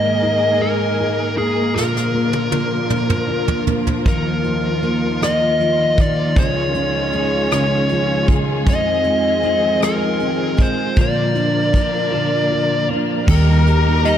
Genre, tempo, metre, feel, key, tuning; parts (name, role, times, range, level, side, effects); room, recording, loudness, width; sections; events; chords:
six-eight pop ballad; 52 BPM (dotted quarters); 6/8; straight; A4 = 441 Hz
fuzz lead guitar; melody; 0.0-14.2 s; Ab4 to Eb5; -20 LUFS; left 1 dB; distortion, diffuse ambient delay
felt-muted upright piano; accompaniment; 0.0-14.2 s; Db2 to Bb4; -22 LUFS; right 1 dB; analog chorus
dark symphonic string section; sustained chords; 0.0-14.2 s; D3 to Bb5; -23 LUFS; left 1 dB
soft brush drum kit; drums; 1.8-14.2 s; crash cymbal, hi-hat, kick drum, rim click, snare drum, toms; -19 LUFS; equal
twelve-string electric guitar; arpeggios; 4.1-14.2 s; Bb2 to Bb4; -24 LUFS; left 1 dB
vintage muted fingered electric bass; bass; 13.3-14.2 s; Eb2; -14 LUFS; equal
moderate plate reverb, RT60 2.2 s; dreamy mix soaked in reverb, faint mains hum; -15 LUFS; side -10 dB against mid
0.0-13.3 A section
drum fill 1.8-4.1
0.0 Absus2; 1.8 Bb; 4.1 Ebsus2; 6.4 Dbadd9; 8.7 Fm7; 11.0 Bb; 13.3 Eb